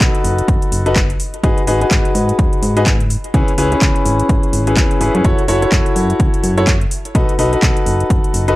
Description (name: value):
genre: piano house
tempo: 126 BPM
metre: 4/4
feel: swing 59% on 16ths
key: unclear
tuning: A4 = 440 Hz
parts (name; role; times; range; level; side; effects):
- warm concert grand piano; riff; 0.0-8.6 s; C#4 to C#5; -17 LUFS; left 1 dB; sidechain pumping, tape echo
- solid FM bass; bass; 0.0-8.6 s; D#1 to G#2; -18 LUFS; equal; sidechain pumping
- electronic kick drum; drums; 0.0-8.2 s; none; -16 LUFS; equal; overdrive
- house drum kit; drums; 0.0-8.6 s; handclaps, hi-hat; -22 LUFS; equal; overdrive
- warbly tape-like pad; texture; 0.8-8.6 s; D#5 to E5; -38 LUFS; right 1 dB; none
room: digital ambience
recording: dry, gritty hardware recording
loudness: -12 LUFS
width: side -18 dB against mid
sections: 0.0-8.6 A section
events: none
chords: 0.0 B7; 1.2 G#m7; 3.3 C#m7; 5.2 F#m7; 6.9 B7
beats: 0.01 0.48 0.96 | 1.44 1.91 2.39 2.86 | 3.34 3.82 4.29 4.77 | 5.25 5.72 6.20 6.67 | 7.15 7.63 8.10